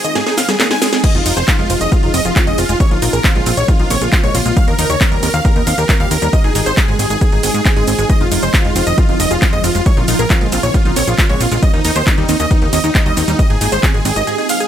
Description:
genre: uplifting trance.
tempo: 136 BPM.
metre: 4/4.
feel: straight.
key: Ab major.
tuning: A4 = 441 Hz.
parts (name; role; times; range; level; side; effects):
dense compressed supersaw; melody; 0.0-14.7 s; Eb4 to Ab5; -19 LUFS; right 1 dB; sidechain pumping, ping-pong delay.
clear grand piano; second line; 0.0-14.7 s; Eb4 to Ab5; -25 LUFS; equal; none.
shimmering ambient pad; sustained chords; 0.0-14.7 s; Db3 to Ab4; -23 LUFS; equal; chorus, built-in reverb, phaser, sidechain pumping.
tight sequenced synth; arpeggios; 0.0-14.6 s; G2 to Ab4; -24 LUFS; right 3 dB; chorus, sidechain pumping, ping-pong delay.
techno drum kit; drums; 0.0-14.7 s; crash cymbal, handclaps, hi-hat, ride cymbal, shaker, snare drum; -19 LUFS; equal; sidechain pumping on hats, studio reverb, sidechain pumping on perc, sidechain pumping on cymbals.
electronic kick drum; drums; 1.0-13.9 s; none; -14 LUFS; equal; studio reverb.
plucky analog bass; bass; 1.1-14.2 s; F1 to Ab2; -18 LUFS; equal; sidechain pumping.
room: little or no reverb.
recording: none.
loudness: -11 LUFS.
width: side -10 dB against mid.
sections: 0.0-14.7 A section.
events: break 0.0-1.0; drum fill 0.2-1.0; kick drops out 14.3-14.7.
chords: 0.0 Ab; 1.0 Fm7; 2.8 Bbmadd9; 4.6 Ebadd9; 6.3 Ab; 8.1 Fm7; 9.9 Bbmadd9; 11.6 Ebadd9; 13.4 Ab.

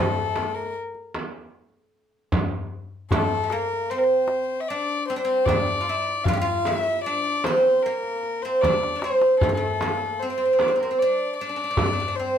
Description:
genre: Turkish makam ensemble.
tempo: 76 BPM.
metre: 4/4.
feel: straight.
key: unclear.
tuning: A4 = 436 Hz.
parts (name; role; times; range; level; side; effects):
oud; melody; 0.0-12.4 s; A3 to G4; -23 LUFS; right 1 dB; plate reverb.
warm violin; second line; 0.0-12.4 s; A4-21c to F5; -26 LUFS; left 4 dB; none.
darbuka; percussion; 0.4-12.0 s; none; -29 LUFS; left 3 dB; none.
frame drum; percussion; 0.4-12.0 s; none; -27 LUFS; right 2 dB; none.
room: wet studio reverb, RT60 0.6 s.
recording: none.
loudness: -21 LUFS.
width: side -9 dB against mid.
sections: 0.0-12.4 A section.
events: drum fill 8.6-9.4.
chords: none.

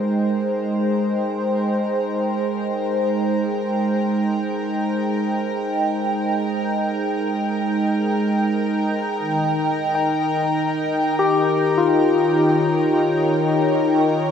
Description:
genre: ambient.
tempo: free time.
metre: none.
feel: none.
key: Ab major.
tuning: A4 = 440 Hz.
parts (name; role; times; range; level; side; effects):
warm analog pad; sustained chords; 0.0-14.3 s; Eb3 to G5; -20 LUFS; right 1 dB; chorus, phaser.
warm symphonic violin section; texture; 0.0-14.3 s; Bb4 to Bb5; -30 LUFS; left 3 dB; none.
barky tine electric piano; arpeggios; 10.0-14.3 s; F4 to G5; -20 LUFS; left 4 dB; tape echo.
room: wet huge ambient reverb, RT60 7.7 s.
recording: nothing above 10.3 kHz.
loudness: -18 LUFS.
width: side -8 dB against mid.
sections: 0.0-14.3 A section.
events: fade-in on violin section 0.0-14.3.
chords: 0.0 Abmaj7; 9.2 Eb7.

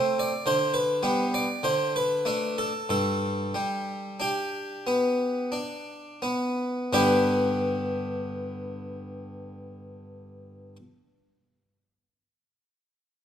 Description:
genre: classical, baroque-style suite movement for harpsichord.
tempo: 42-54 BPM.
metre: 3/4.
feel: rubato.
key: G major.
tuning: A4 = 442 Hz.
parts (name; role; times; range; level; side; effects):
harpsichord; solo; 0.0-10.8 s; G2 to D5; -25 LUFS; equal; none.
room: wet recital hall reverb, RT60 1.6 s.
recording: none.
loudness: -24 LUFS.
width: side -9 dB against mid.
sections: 0.0-6.9 A section; 6.9-11.1 B section.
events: slowing down 0.0-6.9.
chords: 0.5 G/D; 1.6 D5; 2.9 G.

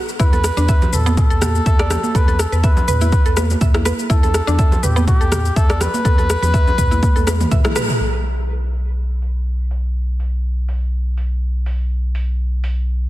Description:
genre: afro house.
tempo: 123 BPM.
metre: 4/4.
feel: swing 54% on 16ths.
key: unclear.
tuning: A4 = 440 Hz.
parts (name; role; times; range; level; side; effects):
mallet-like synth pluck; arpeggios; 0.0-7.9 s; B3 to E5; -25 LUFS; right 1 dB; chorus, sidechain pumping, dub echo.
deep house drum kit; drums; 0.1-12.7 s; hi-hat, rim click, shaker, toms; -23 LUFS; equal; overdrive, low-pass filter on snare, low-pass filter on perc, low-pass filter on toms, low-pass filter on hats.
trumpet with cup mute; melody; 0.2-7.8 s; G4 to B4; -23 LUFS; left 1 dB; dub echo.
round analog bass; bass; 0.2-13.1 s; B1 to E2; -18 LUFS; equal; sidechain pumping.
electronic kick drum; drums; 0.2-7.6 s; none; -15 LUFS; equal; overdrive.
congas; percussion; 0.3-7.9 s; none; -26 LUFS; right 3 dB; none.
room: light reverb.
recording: dense, heavily limited modern master.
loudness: -15 LUFS.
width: side -16 dB against mid.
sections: 0.0-8.0 A section; 8.0-13.1 B section.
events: drum fill 7.0-8.0; band accent 7.6; filter sweep on drum 8.0-13.1.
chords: 0.2 E5; 8.0 N.C..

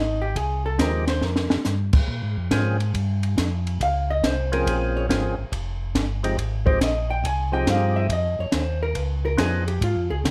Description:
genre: soul jazz organ trio.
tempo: 140 BPM.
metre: 4/4.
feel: swing 67% on 8ths.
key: F minor.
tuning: A4 = 443 Hz.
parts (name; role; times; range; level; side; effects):
vintage hollow-body jazz guitar; accompaniment; 0.0-10.2 s; Eb4 to Ab5; -29 LUFS; equal; none.
mellow tonewheel organ; bass; 0.0-10.3 s; F1 to Db3; -27 LUFS; equal; slow rotary speaker.
compact cocktail drum kit; drums; 0.4-10.3 s; crash cymbal, hi-hat, kick drum, ride cymbal, snare drum; -26 LUFS; equal; none.
percussive tonewheel organ; melody; 0.8-9.6 s; F3 to Ab4; -29 LUFS; equal; slow rotary speaker, overdrive, chorus vibrato, plate reverb.
room: light reverb.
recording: none.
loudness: -23 LUFS.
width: mono.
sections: 0.0-10.3 A section.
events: hollow-body jazz guitar solo 0.0-10.3; drum fill 1.2-1.7.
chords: 0.0 Fm9; 2.1 Bbm9; 5.5 Fm9; 9.0 Db7.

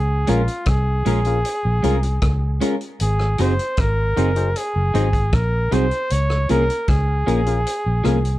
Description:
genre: roots reggae.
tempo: 77 BPM.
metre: 4/4.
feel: straight.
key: Db major.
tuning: A4 = 439 Hz.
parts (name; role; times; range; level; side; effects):
clear flugelhorn; melody; 0.0-8.4 s; F4 to Db5; -24 LUFS; equal; none.
vintage muted fingered electric bass; bass; 0.0-8.4 s; Gb1 to Db2; -19 LUFS; equal; none.
electric guitar at the edge of break-up; accompaniment; 0.3-8.2 s; F3 to Bb4; -23 LUFS; right 2 dB; wide subtle chorus.
percussive organ stab; stabs; 0.3-8.2 s; Db4 to C5; -25 LUFS; left 5 dB; chorus.
vintage drum kit; drums; 0.3-8.4 s; hi-hat, kick drum, rim click; -24 LUFS; equal; vintage 12-bit sampler grit.
room: moderate small room ambience, RT60 0.5 s.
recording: dark, warm production.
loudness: -17 LUFS.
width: side -16 dB against mid.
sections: 0.0-8.4 A section.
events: none.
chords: 0.0 Db6; 3.0 Ab7; 6.1 Db6.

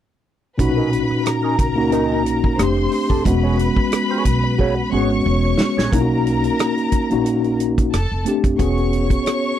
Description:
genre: lush 1970s-style soul.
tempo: 90 BPM.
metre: 4/4.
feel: swing 54% on 16ths.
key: B major.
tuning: A4 = 440 Hz.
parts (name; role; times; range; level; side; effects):
rich studio string section; second line; 0.6-9.6 s; A4 to C#6; -25 LUFS; equal; none.
mellow tine electric piano; accompaniment; 0.6-9.6 s; A#2 to G#4; -19 LUFS; left 2 dB; medium stereo tremolo.
mellow electric guitar; riff; 0.6-6.0 s; C#4 to C#5; -24 LUFS; right 6 dB; wah.
upright bass; bass; 0.6-9.1 s; E1 to C#2; -22 LUFS; right 1 dB; none.
warm soul drum kit; drums; 0.6-9.4 s; hi-hat, kick drum, rim click, snare drum; -20 LUFS; right 1 dB; none.
room: little or no reverb.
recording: dry, close 1970s-style studio recording.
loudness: -16 LUFS.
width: side -10 dB against mid.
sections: 0.6-5.9 A section; 5.9-9.6 B section.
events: drum fill 4.6-5.9.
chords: 0.6 Bmaj9; 2.6 F69; 3.3 E69; 5.9 Bmaj9; 7.9 F69; 8.6 E69.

